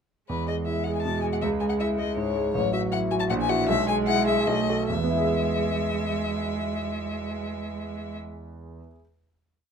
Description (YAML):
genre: quick classical-period movement for piano trio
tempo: 141-161 BPM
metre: 3/4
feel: straight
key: E major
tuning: A4 = 440 Hz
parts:
  - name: rich violin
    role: melody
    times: 0.3-8.2 s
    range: B4 to A5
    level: -30 LUFS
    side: left 9 dB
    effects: none
  - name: rich cello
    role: second line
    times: 0.3-8.2 s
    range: E3 to A3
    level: -30 LUFS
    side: right 5 dB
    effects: none
  - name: clear concert grand piano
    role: accompaniment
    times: 0.3-9.0 s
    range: A1 to E5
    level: -26 LUFS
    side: right 1 dB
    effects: none
room: light reverb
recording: minimal, uncompressed stereo recording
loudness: -24 LUFS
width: side -6 dB against mid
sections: 0.3-4.9 theme; 4.9-7.4 final chord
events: slowing down 2.0-4.9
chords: 0.3 E; 1.4 C#m; 2.5 F#m7/A; 3.3 F#7/A#; 3.7 E/B; 4.5 B7; 4.9 E